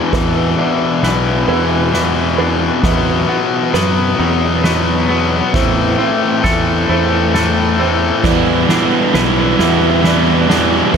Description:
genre	post-rock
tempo	44 BPM (dotted quarters)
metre	6/8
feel	straight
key	E minor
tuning	A4 = 443 Hz
part	felt-muted upright piano	arpeggios	0.0-11.0 s	B4 to E5	-25 LUFS	right 7 dB	analog delay
part	twangy electric guitar	arpeggios	0.0-11.0 s	E3 to B4	-22 LUFS	right 2 dB	tremolo, analog delay
part	distorted electric guitar	riff	0.0-11.0 s	E2 to B3	-15 LUFS	left 6 dB	overdrive
part	fuzz fingered electric bass	bass	0.1-11.0 s	B1 to F#2	-18 LUFS	right 1 dB	overdrive
part	soft-mallet drum kit	drums	0.1-11.0 s	crash cymbal, kick drum, ride cymbal, snare drum	-20 LUFS	right 2 dB	none
part	overdriven electric guitar	riff	8.2-11.0 s	E3 to E4	-15 LUFS	right 11 dB	none
room	wet huge ambient reverb, RT60 6.6 s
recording	dreamy mix soaked in reverb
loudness	-12 LUFS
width	side -6 dB against mid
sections	0.0-11.0 A section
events	build-up 0.0-11.0; drum fill 0.0-11.0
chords	0.0 E5; 2.8 B/E; 5.5 Am/E; 8.2 Em7

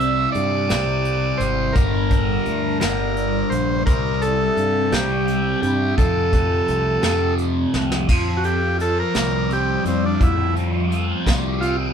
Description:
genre	psychedelic rock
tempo	57 BPM (dotted quarters)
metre	6/8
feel	straight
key	unclear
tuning	A4 = 440 Hz
part	combo organ	melody	0.0-11.8 s	C4 to E5	-22 LUFS	right 1 dB	none
part	fuzz guitar	riff	0.0-11.9 s	F2 to F4	-22 LUFS	equal	distortion, phaser
part	picked electric bass with an envelope filter	bass	0.0-11.9 s	G1 to G2	-24 LUFS	equal	none
part	vintage brush drum kit	drums	0.0-11.8 s	crash cymbal, hi-hat, kick drum, snare drum	-22 LUFS	equal	none
room	light reverb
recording	band playing live in one room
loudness	-17 LUFS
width	side -7 dB against mid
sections	0.0-8.1 A section; 8.1-11.9 B section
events	drum fill 7.7-8.1; transistor combo organ solo 8.1-11.9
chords	0.0 Csus2; 1.8 Gm; 3.9 C5; 6.0 F; 8.1 Fsus2

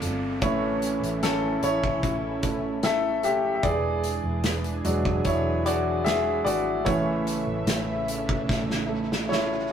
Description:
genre	pop ballad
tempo	74 BPM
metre	4/4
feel	straight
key	unclear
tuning	A4 = 442 Hz
part	bright grand piano	accompaniment	0.0-9.7 s	E3 to E5	-26 LUFS	left 1 dB	none
part	lush unison pad	sustained chords	0.0-9.7 s	C#3 to E5	-32 LUFS	equal	chorus
part	fingerpicked steel-string acoustic guitar	arpeggios	0.0-9.7 s	A2 to B4	-35 LUFS	right 6 dB	none
part	hollow-body short-scale fingered electric bass	bass	0.0-9.7 s	E1 to A1	-33 LUFS	equal	none
part	loose indie drum kit	drums	0.0-9.5 s	hi-hat, kick drum, snare drum	-29 LUFS	equal	none
part	downlifter and riser	sound effects	0.0-9.7 s	none	-42 LUFS	right 1 dB	none
room	moderate stone room reverb, RT60 1.1 s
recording	rough rehearsal-room recording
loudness	-23 LUFS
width	side -8 dB against mid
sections	0.0-9.7 A section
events	grand piano solo 0.0-9.7; drum fill 8.5-9.7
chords	0.4 A; 3.6 E7; 6.9 A

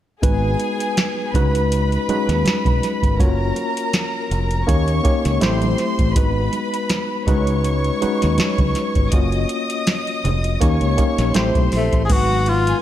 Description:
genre	lush 1970s-style soul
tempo	81 BPM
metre	4/4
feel	swing 54% on 16ths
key	G# dorian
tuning	A4 = 440 Hz
part	warm studio violin section	second line	0.2-12.8 s	F#4 to D#6	-26 LUFS	equal	none
part	tine electric piano	accompaniment	0.2-12.8 s	F#3 to C#5	-22 LUFS	left 1 dB	overdrive, fast stereo tremolo
part	fingered electric bass	bass	0.2-12.7 s	E#1 to D#2	-20 LUFS	equal	none
part	soft vintage rhythm box	drums	0.2-12.8 s	crash cymbal, hi-hat, kick drum, snare drum	-20 LUFS	equal	none
part	congas	percussion	0.2-12.7 s	none	-28 LUFS	right 4 dB	none
part	breathy tenor saxophone	melody	11.8-12.8 s	A3 to G#4	-19 LUFS	left 2 dB	slapback echo
room	light reverb, small room ambience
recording	none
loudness	-16 LUFS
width	side -12 dB against mid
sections	0.2-12.1 A section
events	none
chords	0.2 G#m7; 1.3 C#9sus4; 3.2 F#maj7; 4.7 D#7; 5.4 Am7; 6.2 G#m7; 7.3 C#9sus4; 9.1 F#maj7; 10.6 D#7; 11.4 Am7; 12.1 G#m7

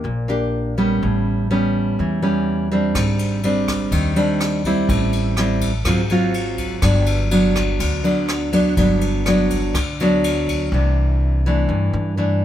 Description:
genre	bossa nova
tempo	124 BPM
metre	4/4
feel	straight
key	G major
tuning	A4 = 440 Hz
part	nylon-string guitar	accompaniment	0.0-12.4 s	G2 to G4	-18 LUFS	equal	none
part	upright bass	bass	0.0-12.4 s	G1 to G2	-22 LUFS	equal	none
part	jazz brush drum kit	drums	2.9-10.6 s	kick drum, ride cymbal, rim click	-25 LUFS	left 1 dB	none
room	light reverb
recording	close, detailed microphones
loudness	-16 LUFS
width	side -11 dB against mid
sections	0.0-10.7 A section; 10.7-12.4 B section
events	none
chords	0.0 Ebmaj7 (rootless); 1.0 A9; 3.0 Abmaj7#11; 4.9 Am7; 5.9 Ab6; 6.8 Gmaj7; 10.7 C69

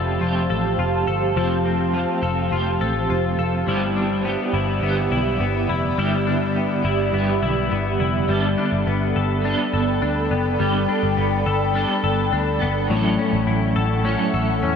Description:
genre	dream pop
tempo	104 BPM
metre	4/4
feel	straight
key	G mixolydian, G lydian from 8.3 s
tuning	A4 = 441 Hz
part	clean electric guitar	accompaniment	0.0-14.8 s	G2 to A4	-25 LUFS	right 2 dB	tremolo, ensemble chorus
part	ethereal airy pad	sustained chords	0.0-14.8 s	G4 to C#6	-24 LUFS	right 2 dB	ensemble chorus, built-in reverb
part	clean electric guitar	arpeggios	0.0-14.8 s	A2 to A4	-24 LUFS	left 6 dB	analog chorus, ping-pong delay
part	vintage muted picked electric bass	bass	0.0-14.8 s	F1 to E2	-24 LUFS	equal	none
room	moderate huge ambient reverb, RT60 6.3 s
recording	dark, warm production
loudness	-18 LUFS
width	side -7 dB against mid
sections	0.0-8.3 A section; 8.3-14.8 B section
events	none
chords	0.0 Fadd9; 3.7 G6; 8.3 Gadd9; 12.9 A6

